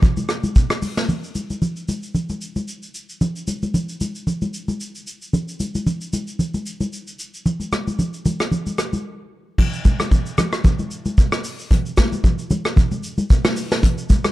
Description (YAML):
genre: amapiano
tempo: 113 BPM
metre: 4/4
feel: swing 55% on 16ths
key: none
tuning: none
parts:
  - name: vintage brush drum kit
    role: drums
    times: 0.0-14.3 s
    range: crash cymbal, hi-hat, kick drum, rim click, shaker, snare drum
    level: -18 LUFS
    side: equal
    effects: none
  - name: congas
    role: percussion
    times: 0.0-14.3 s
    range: none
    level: -22 LUFS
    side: equal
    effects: none
room: little or no reverb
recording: dark, warm production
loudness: -19 LUFS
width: side -16 dB against mid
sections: 0.0-1.1 A section; 1.1-9.6 B section; 9.6-14.3 A section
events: drop 0.0-1.1, 9.6-14.3; break 9.1-9.6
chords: none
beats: 0.03 0.56 | 1.09 1.62 2.15 2.68 | 3.21 3.74 4.27 4.80 | 5.34 5.87 6.40 6.93 | 7.46 7.99 8.52 9.05 | 9.58 10.12 10.65 11.18 | 11.71 12.24 12.77 13.30 | 13.83